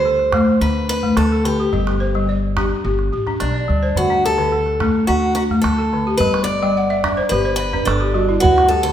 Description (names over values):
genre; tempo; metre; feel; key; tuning
west african traditional, West African string and xylophone music; 107 BPM; 4/4; straight; unclear; A4 = 440 Hz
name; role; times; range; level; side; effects
picked acoustic archtop guitar; melody; 0.0-8.9 s; D4 to D5; -19 LUFS; right 1 dB; none
balafon; arpeggios; 0.0-8.9 s; D3 to G5; -19 LUFS; left 2 dB; none
upright bass; bass; 0.0-8.9 s; G1 to D2; -22 LUFS; equal; none
calabash; percussion; 0.2-8.9 s; none; -26 LUFS; right 4 dB; none
room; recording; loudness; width
wet recital hall reverb, RT60 1.6 s; none; -15 LUFS; side -10 dB against mid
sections
0.0-8.9 A section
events
balafon fill 6.6-8.4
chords
0.0 D5; 1.7 G5; 4.0 D5; 6.2 G5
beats
0.05 0.61 1.17 | 1.73 2.29 2.85 3.40 | 3.96 4.52 5.08 5.64 | 6.20 6.76 7.32 7.88 | 8.44